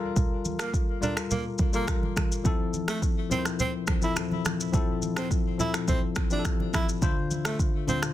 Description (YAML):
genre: afrobeats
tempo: 105 BPM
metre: 4/4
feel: straight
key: F major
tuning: A4 = 439 Hz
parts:
  - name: tine electric piano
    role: accompaniment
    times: 0.0-8.1 s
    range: D3 to C5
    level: -30 LUFS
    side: left 5 dB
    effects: none
  - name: afro-pop drum kit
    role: drums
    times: 0.2-8.1 s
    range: finger snaps, kick drum, rim click, shaker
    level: -27 LUFS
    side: equal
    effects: soft clipping on snare
  - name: congas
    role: percussion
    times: 0.2-8.0 s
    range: none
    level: -34 LUFS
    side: right 3 dB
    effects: none
  - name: breathy tenor saxophone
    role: melody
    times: 0.6-8.0 s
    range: A3 to E4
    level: -33 LUFS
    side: right 2 dB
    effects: ping-pong delay
room: light reverb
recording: dense, heavily limited modern master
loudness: -25 LUFS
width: side -13 dB against mid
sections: 0.0-8.1 A section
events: none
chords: 0.0 Gm9; 2.5 Fmaj7; 7.0 Dm7